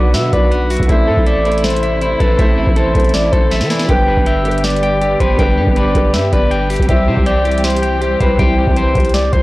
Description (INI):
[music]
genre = hip hop, trap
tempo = 160 BPM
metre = 4/4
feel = half-time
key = unclear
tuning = A4 = 440 Hz
[part]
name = breathy flute-like synth lead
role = second line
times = 0.0-9.4 s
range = B4 to G5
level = -18 LUFS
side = equal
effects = chorus, tape echo
[part]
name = felt-muted upright piano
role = accompaniment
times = 0.0-9.4 s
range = F#3 to C5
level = -20 LUFS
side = equal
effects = none
[part]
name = dark studio string section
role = sustained chords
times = 0.0-9.4 s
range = C3 to G4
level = -25 LUFS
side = equal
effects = none
[part]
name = electric guitar at the edge of break-up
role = arpeggios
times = 0.0-9.4 s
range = E4 to G5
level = -20 LUFS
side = left 1 dB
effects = tape echo
[part]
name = growling 808-style bass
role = bass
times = 0.0-9.4 s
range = G1 to E3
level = -18 LUFS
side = equal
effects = none
[part]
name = booming analog drum machine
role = drums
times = 0.1-9.4 s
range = hi-hat, kick drum, snare drum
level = -16 LUFS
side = equal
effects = none
[sound]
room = digital ambience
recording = dry, gritty hardware recording, transformer saturation, cassette tape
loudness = -11 LUFS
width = side -19 dB against mid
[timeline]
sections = 0.0-9.4 A section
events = drum fill 3.5-3.9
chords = 0.0 Bm; 0.9 Am; 3.9 G; 6.9 C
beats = 0.14 0.52 | 0.89 1.26 1.64 2.02 | 2.39 2.77 3.14 3.52 | 3.89 4.26 4.64 5.01 | 5.39 5.76 6.14 6.51 | 6.89 7.26 7.64 8.02 | 8.39 8.77 9.14